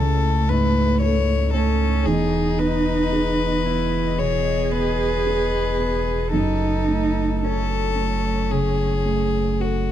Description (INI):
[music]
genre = neoclassical piano and strings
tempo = 56 BPM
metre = 4/4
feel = rubato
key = unclear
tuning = A4 = 441 Hz
[part]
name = rich violin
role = melody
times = 0.0-9.9 s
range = F#4 to C#5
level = -25 LUFS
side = left 5 dB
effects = none
[part]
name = dark cello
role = second line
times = 0.0-9.6 s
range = A3 to G#4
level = -25 LUFS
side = right 4 dB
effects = none
[part]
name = felt-muted upright piano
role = accompaniment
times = 0.0-9.9 s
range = C#2 to A4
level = -24 LUFS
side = right 2 dB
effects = none
[part]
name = warm chamber string section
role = sustained chords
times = 0.0-9.9 s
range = E3 to D#5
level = -35 LUFS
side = equal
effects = none
[part]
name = warm sub bass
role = bass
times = 0.0-9.9 s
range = E1 to C#2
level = -24 LUFS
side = equal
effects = none
[sound]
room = light reverb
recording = dark, warm production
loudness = -18 LUFS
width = side -11 dB against mid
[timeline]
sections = 0.0-9.9 A section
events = none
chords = 0.0 Amaj7/C#; 2.1 Emaj7; 6.3 F#m7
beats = 1.02 | 2.07 3.13 4.19 5.26 | 6.34 7.43 8.52 9.61